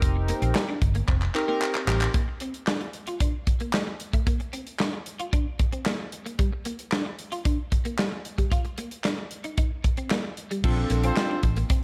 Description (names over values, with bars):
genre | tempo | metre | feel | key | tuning
early-eighties boogie funk | 113 BPM | 4/4 | straight | unclear | A4 = 440 Hz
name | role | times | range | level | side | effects
chorused polysynth | accompaniment | 0.0-2.1, 10.6-11.4 s | C4 to Bb4 | -31 LUFS | equal | none
vintage muted fingered electric bass | bass | 0.0-2.1, 10.6-11.6 s | F1 to Bb1 | -27 LUFS | equal | none
modern studio drum kit | drums | 0.0-11.8 s | crash cymbal, handclaps, hi-hat, kick drum, snare drum | -28 LUFS | equal | gated reverb
electric guitar at the edge of break-up | riff | 0.2-11.8 s | G3 to F4 | -37 LUFS | equal | tube saturation, ensemble chorus
clear horn section | second line | 11.0-11.4 s | C4 to C5 | -34 LUFS | equal | none
room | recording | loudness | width
light reverb, studio ambience | none | -27 LUFS | mono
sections
0.0-2.1 A section; 2.1-10.6 B section; 10.6-11.8 A section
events
drum fill 1.1-2.1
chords
0.0 F9sus4; 2.1 Bbmaj9; 6.1 Gm7; 8.2 F9sus4; 10.6 Bbmaj9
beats
| 0.02 0.55 1.08 1.61 | 2.14 2.67 3.21 3.74 | 4.27 4.80 5.33 5.86 | 6.39 6.92 7.45 7.98 | 8.52 9.05 9.58 10.11 | 10.64 11.17 11.70